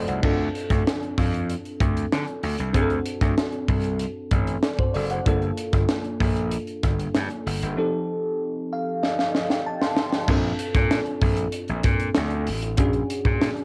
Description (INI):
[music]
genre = polished 1980s jazz-funk pop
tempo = 96 BPM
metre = 4/4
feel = straight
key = Bb major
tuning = A4 = 438 Hz
[part]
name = bell-like FM electric piano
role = accompaniment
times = 0.0-13.6 s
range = F3 to C6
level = -29 LUFS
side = equal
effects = lush chorus
[part]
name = gritty slap bass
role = bass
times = 0.0-13.5 s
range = F#1 to D3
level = -29 LUFS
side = equal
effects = overdrive
[part]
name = crisp fusion drum kit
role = drums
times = 0.1-13.6 s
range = crash cymbal, hi-hat, kick drum, snare drum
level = -26 LUFS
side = equal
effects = cassette tape
[sound]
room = light reverb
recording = home recording on cassette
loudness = -24 LUFS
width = mono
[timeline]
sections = 0.2-10.3 A section; 10.3-13.6 B section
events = FM electric piano fill 8.4-10.3; drum fill 9.0-10.3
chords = 0.2 Dm7; 2.7 D7; 5.3 Gm7; 7.8 F7; 10.3 Bbmaj7; 12.8 Bb7alt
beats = | 0.23 0.86 1.49 2.12 | 2.75 3.38 4.01 4.63 | 5.26 5.89 6.52 7.15 | 7.78 8.40 9.03 9.65 | 10.28 10.91 11.53 12.16 | 12.78 13.41